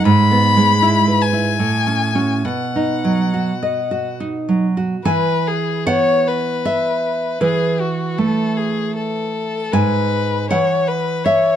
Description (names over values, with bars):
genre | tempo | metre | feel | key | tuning
romantic duo for violin and classical guitar | 66-80 BPM | 3/4 | rubato | E major | A4 = 440 Hz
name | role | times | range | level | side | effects
rich violin | melody | 0.0-11.6 s | F#4 to B5 | -19 LUFS | left 5 dB | plate reverb
nylon-string guitar | accompaniment | 0.0-11.6 s | G#2 to G#5 | -17 LUFS | right 2 dB | none
room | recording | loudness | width
moderate studio reverb, RT60 0.5 s | dark, warm production | -15 LUFS | side -10 dB against mid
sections
0.0-5.0 A section; 5.0-11.6 B section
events
none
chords
0.1 E/G#; 1.6 F#m/A; 2.5 B; 5.0 E; 7.4 Eadd11; 9.7 E/G#